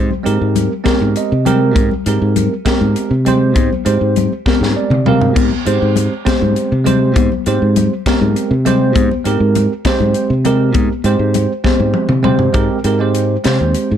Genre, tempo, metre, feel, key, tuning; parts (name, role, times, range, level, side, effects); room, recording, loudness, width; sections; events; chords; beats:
electric jazz fusion; 67 BPM (dotted quarters); 6/8; straight; Ab major; A4 = 440 Hz
bell-like tine electric piano; accompaniment; 0.0-13.9 s; Ab3 to G5; -16 LUFS; right 4 dB; analog chorus, plate reverb
fingered electric bass; bass; 0.0-14.0 s; Eb2 to C3; -15 LUFS; equal
congas; percussion; 0.1-12.5 s; -20 LUFS; left 13 dB
crisp fusion drum kit; drums; 0.3-13.9 s; crash cymbal, hi-hat, kick drum, snare drum, toms; -18 LUFS; equal
light reverb; dark, warm production; -12 LUFS; side -9 dB against mid
0.0-12.6 A section; 12.6-14.0 B section
tine electric piano fill 0.9-1.8, 4.5-5.4; drum fill 4.5-5.4, 11.7-12.6
0.0 Abmaj9
0.86 | 1.76 2.66 | 3.56 4.46 | 5.36 6.26 | 7.16 8.06 | 8.96 9.86 | 10.76 11.66 | 12.56 13.46